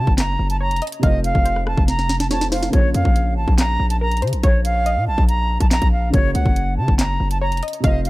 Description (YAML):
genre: hip hop, drill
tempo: 141 BPM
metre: 4/4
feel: half-time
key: Bb harmonic minor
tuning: A4 = 440 Hz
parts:
  - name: silver concert flute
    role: melody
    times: 0.0-8.1 s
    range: Db5 to Bb5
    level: -23 LUFS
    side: right 1 dB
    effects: none
  - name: dark baby grand piano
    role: accompaniment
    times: 0.0-8.1 s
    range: C3 to Db5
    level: -29 LUFS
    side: right 1 dB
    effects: none
  - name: distorted 808-style bass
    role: bass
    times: 0.0-8.1 s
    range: F1 to Db3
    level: -20 LUFS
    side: equal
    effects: distortion
  - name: drill drum kit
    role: drums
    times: 0.1-8.1 s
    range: handclaps, hi-hat, kick drum, rim click, snare drum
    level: -18 LUFS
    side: equal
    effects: none
  - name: warbly dusty pluck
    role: second line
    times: 0.6-8.1 s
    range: Bb4 to F5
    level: -30 LUFS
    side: left 2 dB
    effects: chorus, tape echo
room: digital ambience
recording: dark, warm production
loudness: -16 LUFS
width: side -19 dB against mid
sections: 0.0-8.1 A section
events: drum fill 1.9-2.7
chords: 0.0 Gb; 1.0 F; 2.7 Bbm; 6.1 Gb